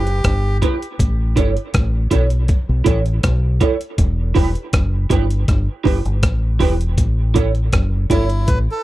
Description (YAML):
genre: roots reggae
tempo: 80 BPM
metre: 4/4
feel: straight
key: A mixolydian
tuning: A4 = 444 Hz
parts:
  - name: melodica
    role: melody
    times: 0.0-0.6, 8.1-8.8 s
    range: E4 to B4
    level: -26 LUFS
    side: right 1 dB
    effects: dub echo
  - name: deep dub fingered electric bass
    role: bass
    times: 0.0-8.7 s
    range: E1 to B1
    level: -17 LUFS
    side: equal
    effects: none
  - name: electric guitar through a small old amp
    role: accompaniment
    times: 0.1-8.2 s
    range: E4 to C#5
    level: -22 LUFS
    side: right 5 dB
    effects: ensemble chorus, dub echo
  - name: breakbeat sampler-style drum kit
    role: drums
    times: 0.1-8.7 s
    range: hi-hat, kick drum, rim click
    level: -18 LUFS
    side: equal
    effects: none
room: little or no reverb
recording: dry, close 1970s-style studio recording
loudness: -15 LUFS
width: side -16 dB against mid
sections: 0.0-7.0 A section; 7.0-8.8 B section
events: melodica solo 7.0-8.8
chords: 0.0 Em; 1.0 A; 4.0 Em; 7.0 A